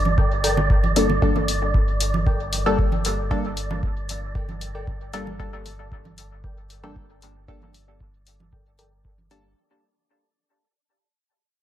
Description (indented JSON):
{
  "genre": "dub techno",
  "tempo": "115 BPM",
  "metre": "4/4",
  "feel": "straight",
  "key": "G minor",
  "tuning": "A4 = 440 Hz",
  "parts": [
    { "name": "soft dub sub bass", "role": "bass", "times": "0.0-9.5 s", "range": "G1", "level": "-28 LUFS", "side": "equal", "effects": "tube saturation, sidechain pumping" },
    { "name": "wind-like tuned noise texture", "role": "texture", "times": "0.0-9.6 s", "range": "D5", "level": "-30 LUFS", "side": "right 3 dB", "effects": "built-in reverb, sidechain pumping" },
    { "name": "congas", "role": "percussion", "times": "0.1-9.3 s", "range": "none", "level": "-29 LUFS", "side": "right 4 dB", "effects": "sidechain pumping on perc, dub echo" },
    { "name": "wavetable chord stab", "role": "riff", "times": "0.2-8.9 s", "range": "A4 to G5", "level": "-31 LUFS", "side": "left 2 dB", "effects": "sidechain pumping, dub echo" },
    { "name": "electronic kick drum", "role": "drums", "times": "0.2-9.2 s", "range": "none", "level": "-22 LUFS", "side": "equal", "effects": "overdrive" },
    { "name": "electronic hi-hat", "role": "drums", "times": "0.4-9.4 s", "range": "none", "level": "-27 LUFS", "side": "left 3 dB", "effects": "overdrive" },
    { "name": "filtered dub chord stab", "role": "stabs", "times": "1.0-9.5 s", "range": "G3 to A4", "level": "-26 LUFS", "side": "left 1 dB", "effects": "chorus, phaser, dub echo" }
  ],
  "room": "light reverb",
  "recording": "echo-heavy mix",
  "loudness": "-20 LUFS",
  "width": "side -11 dB against mid",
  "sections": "0.0-9.6 A section",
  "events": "fade-out 0.0-9.6; filter sweep on synth stab 0.0-9.6",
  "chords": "0.0 Gmadd9"
}